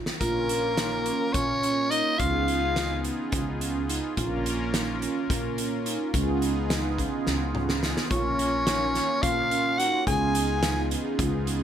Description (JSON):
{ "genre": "progressive instrumental, band music in an uneven meter", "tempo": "213 BPM (eighths)", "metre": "7/8", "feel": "straight", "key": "Bb minor", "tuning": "A4 = 440 Hz", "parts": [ { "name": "vibraphone with soft mallets", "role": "arpeggios", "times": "0.0-11.6 s", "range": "Db4 to F4", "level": "-32 LUFS", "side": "right 6 dB", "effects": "none" }, { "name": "upright bass", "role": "bass", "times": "0.0-11.6 s", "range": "Bb1 to Bb2", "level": "-31 LUFS", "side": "left 1 dB", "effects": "none" }, { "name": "loose indie drum kit", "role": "drums", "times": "0.1-11.6 s", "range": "hi-hat, kick drum, snare drum, toms", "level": "-30 LUFS", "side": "equal", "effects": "none" }, { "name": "raspy soprano saxophone", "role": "melody", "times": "0.2-3.0, 8.1-10.9 s", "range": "Bb4 to Ab5", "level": "-26 LUFS", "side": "equal", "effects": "none" }, { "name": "mellow flugelhorn", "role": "second line", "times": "0.2-3.0, 8.1-10.9 s", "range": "Bb3 to Ab4", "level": "-33 LUFS", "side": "left 4 dB", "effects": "tape echo" }, { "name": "brassy analog pad", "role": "accompaniment", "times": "0.2-11.6 s", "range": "Bb3 to Bb4", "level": "-31 LUFS", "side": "equal", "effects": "chorus, phaser" } ], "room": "moderate small room reverb, RT60 0.5 s", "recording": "none", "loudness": "-24 LUFS", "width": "side -9 dB against mid", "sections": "0.2-11.6 A section", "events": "drum fill 0.0, 7.3-8.1", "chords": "0.2 Bbm; 2.2 Db7; 4.2 Bbm; 6.1 Db7; 8.1 Bbm; 10.1 Db7" }